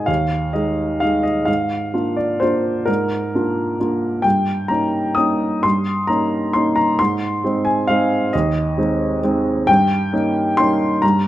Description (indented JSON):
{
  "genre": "classical, piano waltz",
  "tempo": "132 BPM",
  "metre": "3/4",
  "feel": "uneven beats, rubato",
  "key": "Ab major",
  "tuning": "A4 = 440 Hz",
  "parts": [
    { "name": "clear upright piano", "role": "solo", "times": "0.0-11.3 s", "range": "Eb2 to Eb6", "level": "-16 LUFS", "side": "equal", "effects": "none" }
  ],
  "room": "moderate recital hall reverb, RT60 1.6 s",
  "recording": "close, detailed microphones",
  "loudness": "-16 LUFS",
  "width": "side -14 dB against mid",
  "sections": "0.0-11.3 A section",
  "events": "none",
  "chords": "0.0 Ab5; 1.5 Bb7/Ab; 4.2 Eb7/G; 7.0 Ab; 9.7 Eb7/G"
}